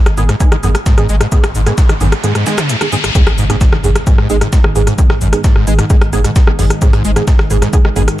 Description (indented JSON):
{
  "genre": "driving peak-time techno",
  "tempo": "131 BPM",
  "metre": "4/4",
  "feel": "straight",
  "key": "G# minor",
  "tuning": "A4 = 440 Hz",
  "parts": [
    { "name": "riser and impact", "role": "sound effects", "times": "1.1-5.0 s", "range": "none", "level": "-22 LUFS", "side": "left 1 dB", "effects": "none" },
    { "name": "saturated sub bass", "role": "bass", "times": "0.1-8.1 s", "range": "G#1", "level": "-16 LUFS", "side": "equal", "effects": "tube saturation, sidechain pumping, low-pass filter" },
    { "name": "breakbeat sampler-style drum kit", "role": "drums", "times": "0.1-8.2 s", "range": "hi-hat, shaker, snare drum", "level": "-28 LUFS", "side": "equal", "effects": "sidechain pumping on perc, high-pass filter on perc, high-pass filter on snare, sidechain pumping on hats, high-pass filter on hats, high-pass filter on room" },
    { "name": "techno drum kit", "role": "drums", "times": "0.1-8.2 s", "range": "hi-hat, rim click", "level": "-20 LUFS", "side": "left 1 dB", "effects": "none" },
    { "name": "screaming distorted acid line", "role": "riff", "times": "0.2-8.0 s", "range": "G#1 to G#3", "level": "-17 LUFS", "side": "equal", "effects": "distortion, ensemble chorus, sidechain pumping" },
    { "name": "filtered dub chord stab", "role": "stabs", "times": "0.2-8.0 s", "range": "D#3 to G#4", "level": "-21 LUFS", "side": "right 4 dB", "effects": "ensemble chorus, sidechain pumping, dub echo" },
    { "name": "electronic kick drum", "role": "drums", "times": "0.4-7.8 s", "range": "none", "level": "-11 LUFS", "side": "equal", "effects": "none" },
    { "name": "analog drone", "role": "drone", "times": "4.0-8.2 s", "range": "G#2 to D#3", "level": "-24 LUFS", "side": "equal", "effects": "none" }
  ],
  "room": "digital ambience",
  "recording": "dark, warm production",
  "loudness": "-9 LUFS",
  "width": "side -15 dB against mid",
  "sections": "0.0-3.2 A section; 3.2-8.2 B section",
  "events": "riser 1.1-3.2; drop 3.2-8.2; impact 3.2-5.0",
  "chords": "0.0 G#m",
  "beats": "0.41 0.86 | 1.32 1.78 2.24 2.69 | 3.15 3.61 4.07 4.53 | 4.99 5.44 5.90 6.36 | 6.82 7.28 7.73 8.19"
}